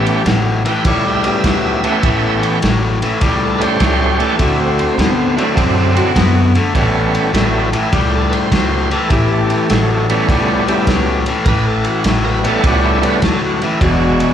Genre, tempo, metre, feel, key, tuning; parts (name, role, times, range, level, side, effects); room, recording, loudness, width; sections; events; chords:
electric blues shuffle; 102 BPM; 4/4; swing 67% on 8ths; A mixolydian; A4 = 440 Hz
bright tonewheel organ; accompaniment; 0.0-14.3 s; F#3 to E5; -19 LUFS; right 6 dB; slow rotary speaker, overdrive, slapback echo
crunchy overdriven guitar; riff; 0.0-14.3 s; E2 to C4; -16 LUFS; left 3 dB
mellow saxophone section; stabs; 0.0-14.3 s; G#3 to G4; -22 LUFS; left 2 dB; slapback echo
upright bass; bass; 0.0-14.2 s; E1 to F#2; -19 LUFS; equal
vintage drum kit; drums; 0.1-14.3 s; kick drum, ride cymbal, snare drum; -19 LUFS; equal
light reverb, small room ambience; live gig heard through the venue's PA, club reverb; -12 LUFS; side -9 dB against mid
0.0-14.3 A section
0.0 A9; 4.4 D9; 6.7 A9; 13.8 E9